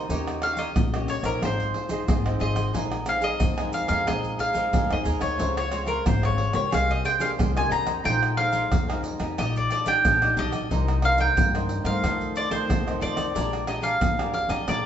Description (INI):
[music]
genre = samba and choro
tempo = 90 BPM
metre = 4/4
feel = straight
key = unclear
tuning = A4 = 439 Hz
[part]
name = mandolin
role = melody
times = 0.0-14.9 s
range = Bb4 to Bb5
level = -25 LUFS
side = equal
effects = none
[part]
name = cavaquinho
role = accompaniment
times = 0.0-14.9 s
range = D4 to Ab5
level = -32 LUFS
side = right 3 dB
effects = none
[part]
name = nylon-string guitar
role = accompaniment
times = 0.0-14.9 s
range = F2 to G4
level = -32 LUFS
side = left 1 dB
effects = none
[part]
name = upright bass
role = bass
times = 0.0-14.9 s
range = Ab1 to G2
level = -29 LUFS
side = left 1 dB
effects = none
[part]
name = maracas, surdo, pandeiro and tamborim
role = percussion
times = 0.1-14.8 s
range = none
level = -28 LUFS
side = equal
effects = none
[sound]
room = wet large studio reverb, RT60 1.2 s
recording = band playing live in one room, nothing above 7.8 kHz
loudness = -22 LUFS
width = side -9 dB against mid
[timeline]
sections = 0.0-14.9 A section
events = drum fill 14.7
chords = 0.1 Eb7; 1.4 Ab6; 2.7 Bb9sus4; 5.4 Dbmaj7; 6.7 Abmaj9#11/C; 8.1 Bb7sus4; 9.4 Ebmaj7/Bb; 10.7 Cm9; 12.0 F7; 13.4 Bb6